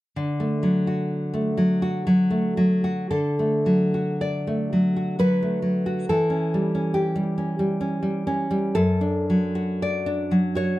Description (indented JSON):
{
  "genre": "romantic piece for solo classical guitar",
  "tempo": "51-71 BPM",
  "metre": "3/4",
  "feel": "rubato",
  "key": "D major",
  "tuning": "A4 = 440 Hz",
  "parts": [
    { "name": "nylon-string guitar", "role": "solo", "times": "0.2-10.8 s", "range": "F#2 to D5", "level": "-20 LUFS", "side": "equal", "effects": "slapback echo" }
  ],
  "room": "light reverb",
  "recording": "close, detailed microphones",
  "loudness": "-20 LUFS",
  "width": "side -16 dB against mid",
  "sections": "0.2-3.1 A section; 3.1-10.8 B section",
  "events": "none",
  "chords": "0.2 D; 6.1 C#dim/E; 8.7 D/F#"
}